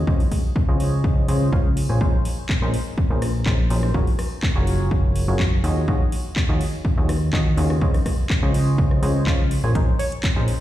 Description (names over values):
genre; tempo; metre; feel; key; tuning
piano house; 124 BPM; 4/4; straight; unclear; A4 = 439 Hz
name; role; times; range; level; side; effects
barking FM electric piano; riff; 0.0-10.5 s; Bb2 to Ab5; -27 LUFS; equal; chorus, sidechain pumping, low-pass filter, ping-pong delay
plucky analog bass; bass; 0.0-10.5 s; Gb1 to Eb2; -21 LUFS; equal; sidechain pumping
electronic kick drum; drums; 0.1-10.3 s; none; -21 LUFS; equal; overdrive
house drum kit; drums; 0.2-10.6 s; handclaps, hi-hat, rim click; -31 LUFS; equal; overdrive
glassy wavetable pluck; melody; 10.0-10.2 s; Db5; -30 LUFS; right 2 dB; chorus, vintage 12-bit sampler grit, ping-pong delay
room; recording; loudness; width
little or no reverb; played on a big sound system in a bare room, large studio reverb; -18 LUFS; side -13 dB against mid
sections
0.0-10.6 A section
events
none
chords
0.1 Dbmaj9; 2.0 Bbm11; 3.9 Gbmaj9; 5.6 Ebm11; 7.8 Dbmaj9; 9.8 Bbm11